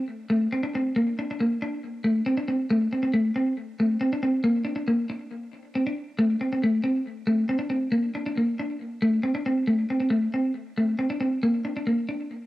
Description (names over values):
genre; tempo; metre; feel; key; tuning
highlife; 138 BPM; 4/4; straight; unclear; A4 = 440 Hz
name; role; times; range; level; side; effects
clean electric guitar; solo; 0.0-12.3 s; A3 to D4; -23 LUFS; equal; tape echo
room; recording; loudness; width
moderate spring reverb, RT60 1.1 s; home recording on cassette; -23 LUFS; side -16 dB against mid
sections
0.0-9.7 A section; 9.7-12.5 B section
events
none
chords
none